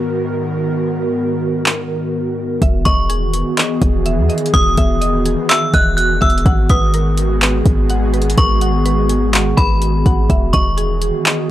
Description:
hip hop, atmospheric cloud-rap; 125 BPM; 4/4; half-time; A4 = 440 Hz
airy breathy pad; sustained chords; 0.0-11.5 s; G#2 to A#4; -19 LUFS; equal; chorus, sidechain pumping
smooth R&B drum kit; drums; 1.7-11.4 s; handclaps, hi-hat, kick drum; -16 LUFS; equal; overdrive
mallet-like synth pluck; arpeggios; 2.6-11.5 s; G#4 to F#5; -26 LUFS; right 1 dB; chorus, low-pass filter, analog delay
warm 808-style bass; bass; 2.6-11.1 s; E1 to E2; -17 LUFS; equal
metallic FM bell; melody; 2.9-10.8 s; B5 to F#6; -19 LUFS; equal; chorus, low-pass filter, analog delay
little or no reverb; dry, gritty hardware recording; -13 LUFS; side -13 dB against mid
0.0-2.6 A section; 2.6-11.5 B section
0.0 G#m9; 2.6 Emaj7; 6.5 G#m9; 10.3 Emaj7

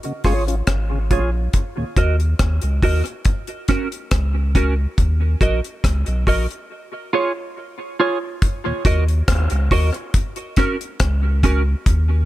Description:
dub reggae; 70 BPM; 4/4; straight; Eb minor; A4 = 440 Hz
deep reggae drum kit; drums; 0.0-12.1 s; hi-hat, kick drum, rim click; -19 LUFS; equal
mellow tonewheel organ; accompaniment; 0.1-1.8, 8.7 s; Eb2 to F4; -29 LUFS; left 2 dB; slow rotary speaker, low-pass filter, tape echo
clean electric guitar; accompaniment; 0.2-11.6 s; Db4 to Eb5; -23 LUFS; right 3 dB; analog chorus, low-pass filter, tape echo
warm sub bass; bass; 0.2-12.2 s; Ab1 to Eb2; -18 LUFS; equal
light reverb, studio reverb; -17 LUFS; side -15 dB against mid
0.0-8.4 A section; 8.4-12.3 B section
break 6.7-8.4
0.0 Db; 1.5 Ebm; 3.3 Gb; 5.0 Ebm; 6.7 Db; 8.4 Ebm; 10.1 Gb

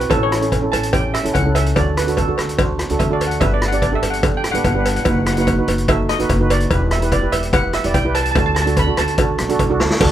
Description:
calypso; 146 BPM; 4/4; straight; A4 = 438 Hz
steel pan; melody; 0.0-9.1 s; A4 to B5; -23 LUFS; right 1 dB
upright bass; bass; 0.0-10.1 s; E1 to D2; -20 LUFS; left 1 dB
street-band drum kit; drums; 0.0-10.1 s; crash cymbal, hi-hat, kick drum, rim click, snare drum; -21 LUFS; left 1 dB
steel pan; accompaniment; 0.1-10.1 s; C#4 to D5; -21 LUFS; right 4 dB
cowbell; percussion; 0.1-10.1 s; -24 LUFS; equal
light reverb; -15 LUFS; side -11 dB against mid
0.0-10.0 A section
steel pan solo 0.0-10.0; drum fill 9.8
0.1 A; 1.8 D; 3.4 G; 5.1 B/F#; 6.7 Em7; 8.4 D

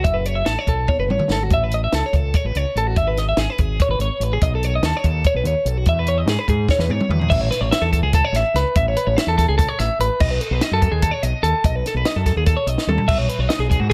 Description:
math rock and midwest emo; 290 BPM (eighths); 7/8; straight; A4 = 443 Hz
twelve-string electric guitar; arpeggios; 0.0-13.9 s; F#4 to E5; -24 LUFS; equal; spring reverb
growling fingered electric bass; bass; 0.0-13.9 s; F#1 to G#2; -24 LUFS; equal; overdrive
compact cocktail drum kit; drums; 0.0-13.9 s; crash cymbal, hi-hat, kick drum, snare drum, toms; -23 LUFS; equal
light reverb; -19 LUFS; mono
0.0-7.3 A section; 7.3-13.9 B section
drum fill 0.9-1.5, 6.7-7.3, 12.8-13.1
0.0 F#m7; 1.5 A69; 3.0 E/G#; 4.4 B7; 5.9 E; 7.3 A; 10.2 B7; 13.1 Emaj7/B (rootless)

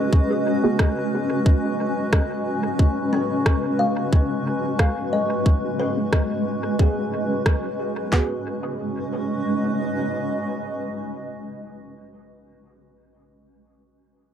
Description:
ambient dub; 90 BPM; 4/4; straight; G# dorian; A4 = 440 Hz
granular cloud pad; sustained chords; 0.0-11.6 s; G#3 to D#5; -23 LUFS; equal; built-in reverb
kalimba; arpeggios; 0.0-12.3 s; C#4 to E#5; -30 LUFS; left 2 dB; low-pass filter, tape echo
organic electronic drum kit; drums; 0.1-8.3 s; handclaps, kick drum, snare drum; -17 LUFS; equal
filtered dub chord stab; stabs; 0.6-0.8, 5.1-12.3 s; B3 to G#4; -28 LUFS; right 2 dB; phaser, wide subtle chorus, dub echo
electronic rim click; drums; 0.8-7.6 s; -27 LUFS; equal; dub echo
moderate echo chamber reverb, RT60 1.9 s, digital ambience; dark, warm production; -20 LUFS; side -9 dB against mid
0.0-8.1 A section; 8.1-10.8 B section
filter sweep on synth stab 0.0-8.1; filter sweep on kalimba 0.0-8.1
0.0 G#m7; 2.8 C#sus2; 8.1 G#m7

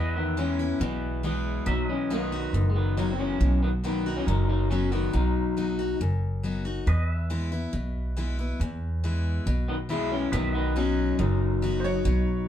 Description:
country; 138 BPM; 4/4; straight; E major; A4 = 440 Hz
electric guitar through a small old amp; melody; 0.0-6.0, 9.7-12.5 s; D#3 to E4; -28 LUFS; left 2 dB
picked steel-string acoustic guitar; accompaniment; 0.0-12.5 s; E2 to F#4; -32 LUFS; left 3 dB
pedal steel guitar; sustained chords; 0.0-12.5 s; B4 to E5; -38 LUFS; right 1 dB
upright bass; bass; 0.0-12.5 s; F#1 to E2; -27 LUFS; right 1 dB
clear upright piano; second line; 11.8-12.5 s; C5 to C#5; -33 LUFS; right 4 dB
moderate studio reverb, RT60 0.6 s; band playing live in one room; -24 LUFS; side -10 dB against mid
0.0-12.5 A section
0.0 E; 1.7 B; 6.9 E; 10.3 B

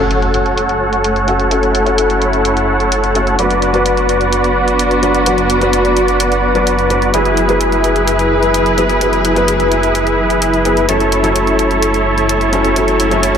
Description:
EDM, festival progressive house; 128 BPM; 4/4; straight; F# minor; A4 = 436 Hz
felt-muted upright piano; accompaniment; 0.0-13.4 s; F#3 to C#5; -18 LUFS; left 3 dB; dub echo
warm studio string section; sustained chords; 0.0-13.4 s; F#3 to B4; -20 LUFS; left 1 dB; vintage 12-bit sampler grit, low-pass filter
dense compressed supersaw; riff; 0.0-13.4 s; E4 to F#5; -14 LUFS; right 1 dB; low-pass filter, dub echo
wide detuned saw bass; bass; 0.0-13.4 s; F#1; -20 LUFS; equal; chorus
impact and riser; sound effects; 0.0-1.5, 12.4-13.4 s; -26 LUFS; equal
electronic hi-hat; drums; 0.1-13.4 s; -22 LUFS; right 1 dB; low-pass filter on hats, low-pass filter on cymbals, low-pass filter on perc, low-pass filter on snare, low-pass filter on room
moderate concert hall reverb, RT60 1.8 s; -11 LUFS; side -7 dB against mid
0.0-13.4 A section
impact 0.0-1.5
0.0 F#m; 3.4 Bm/F#; 7.1 E/F#; 10.9 A/F#

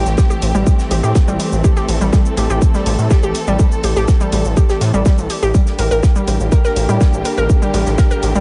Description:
melodic techno; 123 BPM; 4/4; straight; A phrygian; A4 = 439 Hz
warm studio string section; sustained chords; 0.0-8.4 s; D3 to A4; -24 LUFS; equal; sidechain pumping
warbly dusty pluck; arpeggios; 0.0-8.4 s; G3 to Bb4; -22 LUFS; equal; chorus, sidechain pumping, dub echo
gritty driven synth bass; bass; 0.0-8.4 s; A1 to A2; -20 LUFS; equal; sidechain pumping
electronic shaker and hi-hat; drums; 0.1-8.4 s; -31 LUFS; equal
modern studio drum kit; drums; 0.1-8.3 s; hi-hat, snare drum; -37 LUFS; equal
electronic kick drum; drums; 0.2-8.1 s; -15 LUFS; equal
little or no reverb; nothing above 10.3 kHz; -15 LUFS; mono
0.0-8.4 A section
0.0 Am7; 5.5 Gm/A

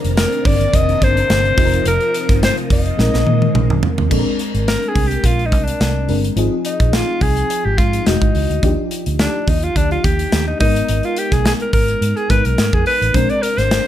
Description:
polished 1980s jazz-funk pop; 106 BPM; 4/4; swing 54% on 16ths; A4 = 441 Hz
FM electric piano; accompaniment; 0.0-13.9 s; Eb3 to Bb4; -22 LUFS; left 2 dB; ensemble chorus
phased string machine; sustained chords; 0.0-4.1, 13.1-13.9 s; C3 to Eb4; -28 LUFS; left 1 dB; ensemble chorus, phaser
vintage muted fingered electric bass; bass; 0.0-13.8 s; E1 to Bb2; -18 LUFS; equal
modern studio drum kit; drums; 0.0-13.9 s; crash cymbal, hi-hat, kick drum, snare drum, toms; -18 LUFS; equal
breathy alto saxophone; melody; 0.2-13.9 s; D4 to Eb5; -19 LUFS; left 1 dB
light reverb; -14 LUFS; side -11 dB against mid
0.0-4.1 A section; 4.1-13.9 B section
drum fill 3.0-4.1; alto saxophone solo 4.1-13.9
0.0 Cm9; 1.6 F7sus4; 3.0 Bb9sus4; 4.1 Bb9; 6.4 Ab6; 8.1 Emaj9; 8.6 Ebmaj9; 10.6 Abmadd9; 13.1 Bb9

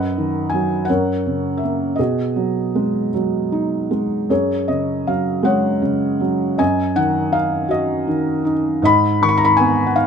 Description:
classical, lyrical solo piano; 53 BPM (dotted quarters); 6/8; rubato; B major; A4 = 441 Hz
felt-muted upright piano; solo; 0.0-10.1 s; F#2 to C#6; -16 LUFS; equal
little or no reverb; close, detailed microphones; -16 LUFS; side -7 dB against mid
0.0-4.3 A section; 4.3-10.1 B section
0.0 B/F#; 0.9 F#; 2.0 B6; 4.3 F#sus2; 6.6 D#madd9/F#; 8.8 G#m

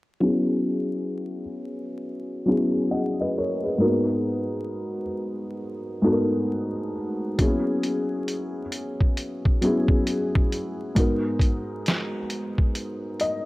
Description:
lo-fi hip hop; 67 BPM; 4/4; swing 61% on 16ths; A4 = 440 Hz
felt-muted upright piano; accompaniment; 0.2-13.5 s; G#2 to F#5; -24 LUFS; left 1 dB; low-pass filter
lo-fi sampler-style drum kit; drums; 7.4-13.5 s; hi-hat, kick drum, snare drum; -22 LUFS; equal
light reverb, digital ambience; vinyl crackle; -22 LUFS; side -19 dB against mid
0.2-13.5 A section
filter sweep on felt piano 0.2-13.5; break 12.8-13.5; felt piano fill 12.8-13.5
0.2 F#7sus4; 3.8 G#m9; 7.4 F#7sus4; 11.0 G#m9

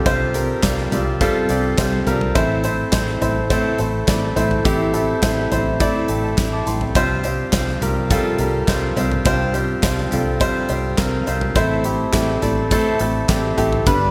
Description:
piano-driven pop; 104 BPM; 4/4; straight; A4 = 436 Hz
clear grand piano; accompaniment; 0.0-14.1 s; G2 to D6; -22 LUFS; equal
picked steel-string acoustic guitar; riff; 0.0-14.1 s; G2 to B4; -29 LUFS; equal
vintage muted fingered electric bass; bass; 0.1-14.1 s; G1 to C2; -27 LUFS; equal
huge arena drum kit; drums; 0.1-14.0 s; handclaps, hi-hat, kick drum, snare drum, toms; -25 LUFS; equal; gated reverb
tambourine; percussion; 0.3-14.0 s; -40 LUFS; equal
moderate plate reverb, RT60 1.4 s, small room ambience; bright 1980s-style digital production; -19 LUFS; mono
0.0-14.1 A section
0.0 Csus4; 2.4 Am; 7.0 Csus4; 11.6 Am

